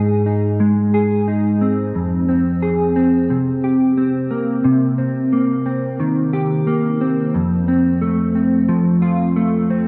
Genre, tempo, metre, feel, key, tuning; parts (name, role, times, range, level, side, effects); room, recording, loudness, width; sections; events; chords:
dream pop; 89 BPM; 4/4; straight; C minor; A4 = 440 Hz
mellow electric guitar; solo; 0.0-9.9 s; F2 to Ab4; -17 LUFS; equal; analog chorus, digital delay
wet plate reverb, RT60 2.9 s; dreamy mix soaked in reverb; -17 LUFS; mono
0.0-4.6 A section; 4.6-9.9 B section
0.0 Ab; 1.9 Fm; 3.3 C5; 4.6 Cm7; 7.3 F